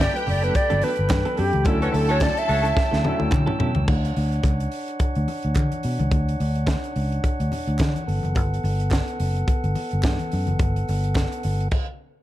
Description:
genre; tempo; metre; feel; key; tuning
disco; 107 BPM; 4/4; swing 56% on 16ths; D major; A4 = 440 Hz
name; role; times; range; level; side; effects
bright alto flute; melody; 0.0-3.2 s; G4 to E5; -24 LUFS; right 1 dB; none
clear studio string section; second line; 0.0-3.6 s; G4 to A5; -31 LUFS; left 3 dB; analog delay
clean electric guitar; accompaniment; 0.0-3.8 s; F#3 to A4; -31 LUFS; right 6 dB; tremolo
clear baby grand piano; accompaniment; 0.0-3.9 s; D3 to G4; -32 LUFS; left 4 dB; none
tonewheel organ; sustained chords; 0.0-11.7 s; B3 to E6; -31 LUFS; equal; stopped rotary speaker
fingered electric bass; bass; 0.0-11.7 s; F#1 to D3; -23 LUFS; equal; none
tight funk drum kit; drums; 0.0-11.9 s; crash cymbal, hi-hat, kick drum, snare drum, toms; -25 LUFS; equal; none
group handclap; percussion; 0.0-11.3 s; none; -40 LUFS; right 5 dB; none
congas; percussion; 0.3-11.3 s; none; -33 LUFS; left 3 dB; none
clear horn section; stabs; 1.8-2.7 s; C#4 to C#5; -30 LUFS; equal; none
room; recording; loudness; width
small room ambience; dark, warm production; -20 LUFS; side -14 dB against mid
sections
0.0-3.9 A section; 3.9-12.2 B section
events
alto flute solo 0.0-3.9; band accent 1.7-3.9; drum fill 2.8-3.9; stop 11.7-12.2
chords
0.0 Gmaj9; 1.7 Dmaj9; 3.9 Dmaj7; 8.1 Gmaj9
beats
0.00 0.55 1.11 | 1.66 2.22 2.77 3.33 | 3.89 4.44 5.00 5.56 | 6.12 6.68 7.24 7.80 | 8.36 8.92 9.48 10.04 | 10.60 11.16 11.72

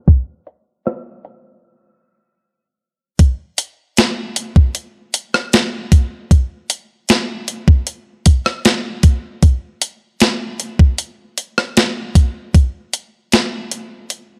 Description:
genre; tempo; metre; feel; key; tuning
R&B; 77 BPM; 4/4; straight; none; none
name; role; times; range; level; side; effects
clean 12-bit digital drum machine; drums; 0.1-14.3 s; hi-hat, kick drum, rim click, snare drum; -14 LUFS; equal; none
room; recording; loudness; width
light reverb, digital ambience; dry, gritty hardware recording, low-pass filter; -17 LUFS; mono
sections
0.0-3.2 A section; 3.2-14.4 B section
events
break 1.6-3.2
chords
none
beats
| 0.08 0.86 1.64 2.41 | 3.19 3.97 4.75 5.53 | 6.31 7.09 7.87 8.65 | 9.43 10.21 10.99 11.77 | 12.54 13.32 14.10

